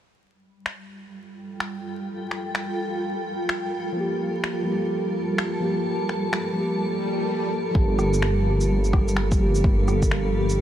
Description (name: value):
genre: future garage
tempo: 127 BPM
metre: 4/4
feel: swing 62% on 16ths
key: G minor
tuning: A4 = 440 Hz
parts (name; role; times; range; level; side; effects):
- granular cloud pad; sustained chords; 1.1-10.6 s; G3 to A5; -27 LUFS; right 1 dB; built-in reverb, sidechain pumping
- electronic finger snaps, rim click and shaker; drums; 0.7-10.6 s; none; -29 LUFS; left 1 dB; vintage 12-bit sampler grit, small room ambience
- muted felt-like synth keys; accompaniment; 3.9-10.6 s; F3 to G4; -26 LUFS; equal; chorus, sidechain pumping, low-pass filter, analog delay
- swell; sound effects; 6.9-7.7 s; none; -35 LUFS; left 2 dB; none
- dark detuned saw bass; bass; 7.7-10.6 s; G1; -23 LUFS; equal; tube saturation, sidechain pumping
- electronic kick drum; drums; 7.8-10.1 s; none; -21 LUFS; equal; overdrive, vintage 12-bit sampler grit, small room ambience
room: light reverb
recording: vinyl crackle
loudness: -22 LUFS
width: side -11 dB against mid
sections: 0.2-7.7 A section; 7.7-10.6 B section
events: swell 6.9-7.7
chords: 0.2 Gm7